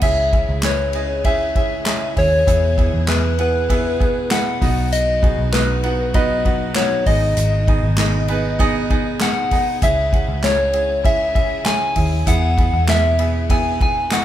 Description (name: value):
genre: piano-driven pop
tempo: 98 BPM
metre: 4/4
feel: straight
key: C# minor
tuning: A4 = 439 Hz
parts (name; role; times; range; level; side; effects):
- soft struck synth lead; melody; 0.0-14.2 s; B4 to G#5; -20 LUFS; left 2 dB; chorus
- bright grand piano; accompaniment; 0.0-14.2 s; G#2 to F#5; -24 LUFS; right 4 dB; none
- warm chamber string section; sustained chords; 0.0-14.2 s; B2 to G#4; -32 LUFS; left 2 dB; none
- vintage muted fingered electric bass; bass; 0.0-14.2 s; G#1 to E2; -21 LUFS; equal; none
- unplugged drum kit; drums; 0.0-14.2 s; crash cymbal, handclaps, hi-hat, kick drum, ride cymbal, snare drum; -20 LUFS; equal; none
room: moderate large studio reverb, RT60 0.8 s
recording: band playing live in one room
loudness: -15 LUFS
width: side -12 dB against mid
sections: 0.0-14.2 A section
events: none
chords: 0.0 C#m; 2.5 E; 4.6 B; 7.1 G#m; 9.8 C#m; 12.3 E